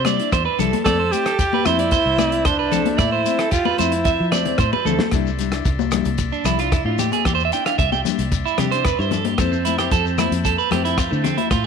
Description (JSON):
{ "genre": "highlife guitar band", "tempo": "113 BPM", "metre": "4/4", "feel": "straight", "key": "C major", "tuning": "A4 = 440 Hz", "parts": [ { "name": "clear alto saxophone", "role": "melody", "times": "0.0-4.3 s", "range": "D4 to A4", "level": "-21 LUFS", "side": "right 2 dB", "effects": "none" }, { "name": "nylon-string guitar", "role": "accompaniment", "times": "0.0-11.3 s", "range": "G3 to E4", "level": "-27 LUFS", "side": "left 14 dB", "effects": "none" }, { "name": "combo organ", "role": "sustained chords", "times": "0.0-11.7 s", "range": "C5 to C6", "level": "-32 LUFS", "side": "left 12 dB", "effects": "none" }, { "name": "electric guitar at the edge of break-up", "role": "arpeggios", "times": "0.0-11.7 s", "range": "A3 to G5", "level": "-22 LUFS", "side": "right 13 dB", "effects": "vibrato effect, slapback echo" }, { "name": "fingered electric bass", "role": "bass", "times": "0.0-11.7 s", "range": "C2 to F3", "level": "-24 LUFS", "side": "equal", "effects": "none" }, { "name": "warm soul drum kit", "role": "drums", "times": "0.0-11.6 s", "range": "hi-hat, kick drum, rim click, snare drum, toms", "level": "-25 LUFS", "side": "equal", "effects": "none" }, { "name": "congas", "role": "percussion", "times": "0.1-11.5 s", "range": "none", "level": "-26 LUFS", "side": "left 15 dB", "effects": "none" }, { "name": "shekere", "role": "percussion", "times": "0.1-11.6 s", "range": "none", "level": "-29 LUFS", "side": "left 5 dB", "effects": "none" } ], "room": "light reverb, small room ambience", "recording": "1960s-style stereo with parts hard left and right, faint mains hum", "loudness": "-17 LUFS", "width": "side -6 dB against mid", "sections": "0.0-5.1 A section; 5.1-11.7 B section", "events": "drum fill 4.9; clean electric guitar solo 5.1-11.7", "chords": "0.0 Cadd9; 0.9 Fmaj7; 5.1 Cadd9; 9.4 Fmaj7", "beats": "0.33 | 0.86 1.39 1.93 2.46 | 2.99 3.52 4.06 4.59 | 5.12 5.65 6.19 6.72 | 7.25 7.78 8.31 8.85 | 9.38 9.91 10.44 10.97 | 11.50" }